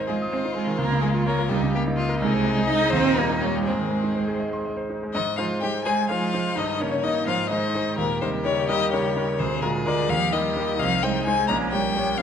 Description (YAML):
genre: quick classical-period movement for piano quartet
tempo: 85 BPM (dotted quarters)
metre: 6/8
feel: straight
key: Ab major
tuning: A4 = 445 Hz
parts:
  - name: rich violin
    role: melody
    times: 0.0-12.2 s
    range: G4 to Bb5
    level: -26 LUFS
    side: left 6 dB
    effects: none
  - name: rich violin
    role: second line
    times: 0.0-12.2 s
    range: C4 to Ab4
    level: -31 LUFS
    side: left 3 dB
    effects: none
  - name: bright concert grand piano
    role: accompaniment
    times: 0.0-12.2 s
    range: Bb1 to Eb6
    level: -25 LUFS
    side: equal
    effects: none
  - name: rich cello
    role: second line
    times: 0.1-12.2 s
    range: Bb2 to Eb4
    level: -27 LUFS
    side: right 5 dB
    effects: none
room: wet scoring stage reverb, RT60 1.6 s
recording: nothing above 10.4 kHz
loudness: -21 LUFS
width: side -8 dB against mid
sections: 0.0-5.1 A section; 5.1-12.2 B section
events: none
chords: 0.0 Ab; 0.8 Bbm/Db; 1.5 Eb5/Db; 2.2 Ab/C; 2.9 Eb7; 3.7 Ab; 6.6 Eb7/G; 7.3 Ab; 8.0 Eb; 9.4 Bb7/D; 10.1 Eb; 10.8 Ab/C; 11.5 Gdim/Bb